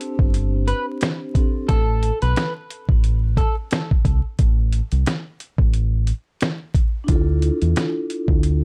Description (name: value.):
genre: hip hop, boom-bap hip-hop.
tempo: 89 BPM.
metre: 4/4.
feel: swing 57% on 16ths.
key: D dorian.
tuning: A4 = 440 Hz.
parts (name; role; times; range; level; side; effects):
vibraphone with soft mallets; accompaniment; 0.0-1.7, 7.0-8.6 s; C4 to C5; -28 LUFS; equal; high-pass filter, low-pass filter.
dusty soul sampler-style drum kit; drums; 0.0-8.6 s; hi-hat, kick drum, snare drum; -22 LUFS; equal; none.
deep dub fingered electric bass; bass; 0.2-8.6 s; G1 to E2; -22 LUFS; equal; none.
electric guitar at the edge of break-up; melody; 0.7-3.5 s; A4 to B4; -30 LUFS; equal; high-pass filter, low-pass filter, digital delay.
room: little or no reverb.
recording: dark, warm production, vinyl crackle.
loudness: -20 LUFS.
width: mono.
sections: 0.0-8.6 A section.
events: none.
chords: 0.0 Gsus4; 1.7 N.C.; 7.1 Dmadd9.